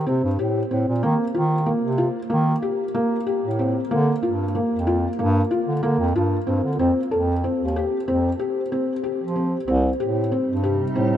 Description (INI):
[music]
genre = contemporary instrumental, contemporary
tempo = 188 BPM (eighths)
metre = 9/8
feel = straight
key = C dorian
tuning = A4 = 439 Hz
[part]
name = warm bass clarinet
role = bass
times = 0.0-11.2 s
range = C2 to F3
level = -22 LUFS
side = right 1 dB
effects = none
[part]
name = felt-muted upright piano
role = arpeggios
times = 0.1-11.2 s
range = Bb3 to A4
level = -22 LUFS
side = left 1 dB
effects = none
[part]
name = granular cloud pad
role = sustained chords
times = 10.4-11.2 s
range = C3 to Eb4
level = -29 LUFS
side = right 1 dB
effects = built-in reverb
[sound]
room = wet huge ambient reverb, RT60 8.2 s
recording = in a vast, echoing space, nothing above 10.5 kHz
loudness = -20 LUFS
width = side -11 dB against mid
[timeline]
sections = 0.0-11.2 A section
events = none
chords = 0.0 C5; 1.0 Ebadd9; 3.9 Bb; 6.8 F5; 9.7 Cm